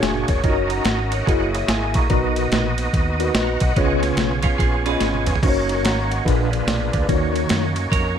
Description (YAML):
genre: uptempo gospel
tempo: 144 BPM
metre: 4/4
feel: swing 63% on 8ths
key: F# major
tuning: A4 = 440 Hz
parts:
  - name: mellow tine electric piano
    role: accompaniment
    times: 0.0-7.7 s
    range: A#2 to C#6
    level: -22 LUFS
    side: left 2 dB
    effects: medium stereo tremolo
  - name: overdriven tonewheel organ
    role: sustained chords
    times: 0.0-8.2 s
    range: A#3 to A#5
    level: -24 LUFS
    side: right 3 dB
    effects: slow rotary speaker, chorus vibrato
  - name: deep dub fingered electric bass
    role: bass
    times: 0.0-8.2 s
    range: E1 to F#2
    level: -24 LUFS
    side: equal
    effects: none
  - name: boom bap sampler-style drum kit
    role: drums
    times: 0.0-8.0 s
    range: crash cymbal, kick drum, ride cymbal, snare drum, toms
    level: -22 LUFS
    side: equal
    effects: none
  - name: clean electric guitar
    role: second line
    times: 4.4-5.4, 7.9-8.2 s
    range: C#4 to C#5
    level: -25 LUFS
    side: right 8 dB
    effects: none
room: light reverb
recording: none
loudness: -17 LUFS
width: side -8 dB against mid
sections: 0.0-8.2 A section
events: drum fill 5.0-5.4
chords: 0.4 D#m7/F#; 1.3 F#13; 2.1 Bmaj7; 3.8 C#7; 5.4 F#6; 6.3 A#7b9; 7.1 D#m7